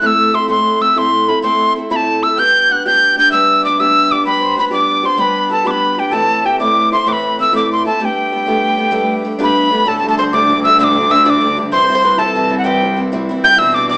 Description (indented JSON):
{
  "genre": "celtic folk, Celtic slide",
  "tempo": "128 BPM (dotted quarters)",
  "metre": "12/8",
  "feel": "straight",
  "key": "G major",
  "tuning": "A4 = 439 Hz",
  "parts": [
    { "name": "tin whistle", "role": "melody", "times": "0.0-14.0 s", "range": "F#5 to G6", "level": "-12 LUFS", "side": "equal", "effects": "none" },
    { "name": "picked steel-string acoustic guitar", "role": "accompaniment", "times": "0.0-14.0 s", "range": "D2 to A4", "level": "-18 LUFS", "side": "equal", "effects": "none" },
    { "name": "accordion", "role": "second line", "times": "2.4-14.0 s", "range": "G4 to G5", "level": "-22 LUFS", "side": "left 1 dB", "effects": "none" },
    { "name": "mandolin", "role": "second line", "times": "9.4-14.0 s", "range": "G4 to G5", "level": "-22 LUFS", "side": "equal", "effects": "none" },
    { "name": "rich cello", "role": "bass", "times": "9.9-14.0 s", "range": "C2 to B2", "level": "-19 LUFS", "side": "equal", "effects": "none" }
  ],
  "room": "moderate large studio reverb, RT60 0.9 s",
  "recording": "band playing live in one room, small speaker sound",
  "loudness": "-11 LUFS",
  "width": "side -26 dB against mid",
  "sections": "0.0-9.9 A section; 9.9-14.0 B section",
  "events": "none",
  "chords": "0.0 Am; 2.4 G; 6.1 Am; 8.0 Gadd9; 9.9 Dsus4; 11.7 C"
}